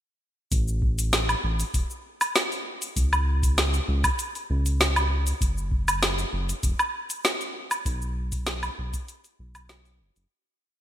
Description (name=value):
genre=sunset chillout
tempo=98 BPM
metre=4/4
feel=straight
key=unclear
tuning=A4 = 439 Hz
part: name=round analog bass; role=bass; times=0.5-10.3 s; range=E1 to C#2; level=-26 LUFS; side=equal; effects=none
part: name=deep house drum kit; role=drums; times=0.5-10.3 s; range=hi-hat, shaker, snare drum, woodblock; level=-26 LUFS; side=equal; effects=none
part: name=electronic kick drum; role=drums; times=0.5-9.1 s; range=none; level=-27 LUFS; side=equal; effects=none
room=light reverb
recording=bright 1980s-style digital production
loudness=-23 LUFS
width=side -11 dB against mid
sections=0.5-10.3 groove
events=fade-out 7.0-10.3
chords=none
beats=| 0.52 1.13 1.74 2.35 | 2.96 3.58 4.19 4.80 | 5.41 6.03 6.64 7.25 | 7.86 8.47 9.09 9.70